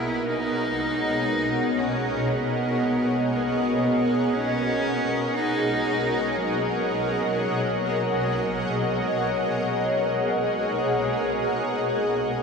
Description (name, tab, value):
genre	ambient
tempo	free time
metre	none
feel	none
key	B major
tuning	A4 = 440 Hz
part	clear cello	melody	0.0-11.5 s	F#3 to E4	-28 LUFS	equal	shimmer reverb, analog delay
part	granular cloud pad	sustained chords	0.0-12.4 s	B2 to F#5	-23 LUFS	equal	built-in reverb, wide subtle chorus, shimmer reverb
room	wet huge ambient reverb, RT60 8.4 s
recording	dreamy mix soaked in reverb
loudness	-22 LUFS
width	side -5 dB against mid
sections	0.0-12.4 A section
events	none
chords	0.0 B6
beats	free time